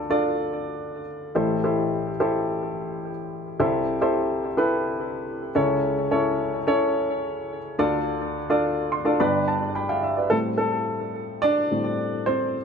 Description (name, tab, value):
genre	pop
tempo	107 BPM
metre	4/4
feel	straight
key	A minor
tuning	A4 = 444 Hz
part	dark upright piano	solo	0.0-12.6 s	G1 to C6	-22 LUFS	equal	ping-pong delay
room	moderate large studio reverb, RT60 1.1 s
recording	none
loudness	-22 LUFS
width	side -6 dB against mid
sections	0.0-10.3 A section; 10.3-12.6 B section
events	upright piano fill 8.6-10.3; upright piano solo 10.3-12.6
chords	0.0 Dm; 1.4 Am7; 3.6 C6; 5.6 A/C#; 7.8 Dm; 9.2 G; 10.3 Am7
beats	0.24 0.80 | 1.36 1.92 2.48 3.04 | 3.60 4.16 4.72 5.28 | 5.84 6.40 6.96 7.52 | 8.08 8.64 9.20 9.76 | 10.32 10.88 11.44 11.99 | 12.55